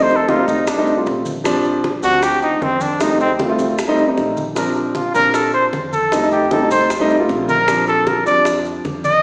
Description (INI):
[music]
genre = Afro-Cuban jazz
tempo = 154 BPM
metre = 4/4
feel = straight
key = Bb major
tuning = A4 = 440 Hz
[part]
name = breathy trumpet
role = melody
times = 0.0-9.2 s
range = C4 to Eb5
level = -16 LUFS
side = equal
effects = none
[part]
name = dark baby grand piano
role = accompaniment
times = 0.0-8.8 s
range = F3 to F4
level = -17 LUFS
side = equal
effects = none
[part]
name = upright bass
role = bass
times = 0.0-9.2 s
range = Bb1 to Bb2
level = -32 LUFS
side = equal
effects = none
[part]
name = bongos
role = percussion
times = 0.1-9.0 s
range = none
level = -25 LUFS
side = equal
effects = none
[part]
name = congas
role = percussion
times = 0.1-9.2 s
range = none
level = -32 LUFS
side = equal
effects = none
[part]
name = maracas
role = percussion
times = 0.1-9.2 s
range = none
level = -35 LUFS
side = equal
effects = none
[sound]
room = wet recital hall reverb, RT60 1.3 s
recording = recorded in a church or concert hall, small speaker sound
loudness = -14 LUFS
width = side -38 dB against mid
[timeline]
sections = 0.0-9.2 A section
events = trumpet solo 0.0-9.2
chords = 0.0 F7; 1.4 Bb69; 3.0 F7; 4.6 Bb69; 6.1 F7; 7.7 Bb69